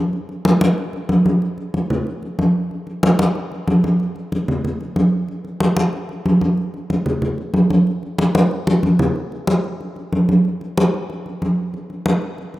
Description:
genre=jazz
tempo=186 BPM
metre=4/4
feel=straight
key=none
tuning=none
part: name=congas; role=percussion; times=0.1-12.6 s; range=none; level=-16 LUFS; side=equal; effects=none
room=light reverb, small room ambience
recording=rough home demo mix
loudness=-16 LUFS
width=side -16 dB against mid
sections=0.0-9.2 A section; 9.2-12.6 B section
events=drum fill 8.7-9.2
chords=none

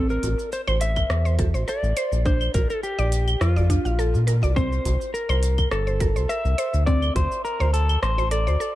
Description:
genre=organic downtempo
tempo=104 BPM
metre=4/4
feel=swing 54% on 16ths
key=D minor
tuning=A4 = 440 Hz
part: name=electric slide guitar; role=melody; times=0.0-8.8 s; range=F4 to E5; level=-27 LUFS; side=left 1 dB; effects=digital delay
part: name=mallet-like synth pluck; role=arpeggios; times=0.0-8.8 s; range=C4 to F5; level=-29 LUFS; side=right 1 dB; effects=chorus, ping-pong delay
part: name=round analog bass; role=bass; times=0.0-8.6 s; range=G1 to Bb2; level=-21 LUFS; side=equal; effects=none
part: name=organic electronic drum kit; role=drums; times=0.1-8.7 s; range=claves, hi-hat, rim click, shaker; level=-31 LUFS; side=right 1 dB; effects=none
part: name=djembe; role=percussion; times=0.2-8.6 s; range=none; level=-33 LUFS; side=right 1 dB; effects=none
part: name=electronic kick drum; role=drums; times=1.0-7.3 s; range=none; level=-24 LUFS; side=equal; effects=none
room=digital ambience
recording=dark, warm production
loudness=-20 LUFS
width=side -15 dB against mid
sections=0.0-8.8 A section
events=none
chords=0.0 Am; 2.3 Bb; 4.6 C7; 6.9 D5

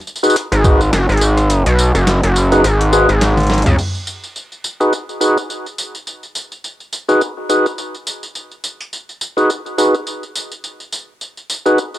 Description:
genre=glitch hop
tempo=105 BPM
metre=4/4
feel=swing 57% on 16ths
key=G# minor pentatonic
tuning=A4 = 439 Hz
part: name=boom bap sampler-style drum kit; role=drums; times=0.0-12.0 s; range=crash cymbal, hi-hat, rim click, snare drum, tambourine, toms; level=-21 LUFS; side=equal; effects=small room ambience
part: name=tonewheel organ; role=stabs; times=0.2-11.8 s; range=D#4 to B4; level=-15 LUFS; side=equal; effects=slow rotary speaker, sidechain pumping, low-pass filter, cassette tape, tape echo
part: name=gritty driven synth bass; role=bass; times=0.5-3.8 s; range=F#1 to C#2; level=-12 LUFS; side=equal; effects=tube saturation
part: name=electronic kick drum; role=drums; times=0.6-0.8 s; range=none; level=-13 LUFS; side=equal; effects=small room ambience
room=moderate small room reverb, RT60 0.5 s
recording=home recording on cassette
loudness=-13 LUFS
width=side -14 dB against mid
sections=0.0-3.8 A section; 3.8-12.0 B section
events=kick drops out 1.5-3.8; drum fill 3.4-3.8; band accent 3.5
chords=0.0 G#m7

